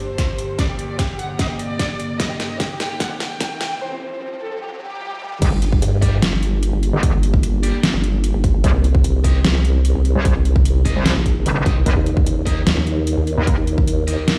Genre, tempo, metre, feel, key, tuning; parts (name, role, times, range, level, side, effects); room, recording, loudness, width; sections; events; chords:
heavy wobble dubstep; 149 BPM; 4/4; half-time; G minor; A4 = 443 Hz
dark studio violin section; melody; 0.0-5.3 s; C4 to G5; -31 LUFS; equal; tape echo
evolving wavetable pad; sustained chords; 0.0-14.4 s; C2 to Bb4; -31 LUFS; equal; phaser, built-in reverb, sidechain pumping
riser; sound effects; 1.7-5.4 s; -39 LUFS; equal
dubstep drum kit; drums; 0.2-14.4 s; crash cymbal, hi-hat, snare drum, toms; -25 LUFS; equal; overdrive, high-pass filter on hats, high-pass filter on snare, high-pass filter on toms, high-pass filter on cymbals, high-pass filter on room
electronic kick drum; drums; 0.2-13.9 s; -21 LUFS; equal; overdrive
metallic wobble bass; bass; 5.4-13.6 s; G1 to Eb2; -20 LUFS; equal; chorus, overdrive
vowel-sweep wobble bass; bass; 5.5-14.2 s; G1 to G2; -20 LUFS; equal; chorus, overdrive
high-gain distorted guitar; stabs; 6.0-14.2 s; Bb3 to Eb5; -35 LUFS; equal; distortion, tape echo
light reverb; played on a big sound system in a bare room, stone room reverb, high-pass filter; -18 LUFS; mono
0.0-5.4 A section; 5.4-14.4 B section
build-up 0.0-5.4; drum fill 0.0-3.8, 5.0-5.4; riser 1.7-5.4; break 3.8-5.4; drop 5.4-14.4
0.0 Gm; 2.2 Cm; 5.4 Gm; 8.6 Cm; 11.9 Eb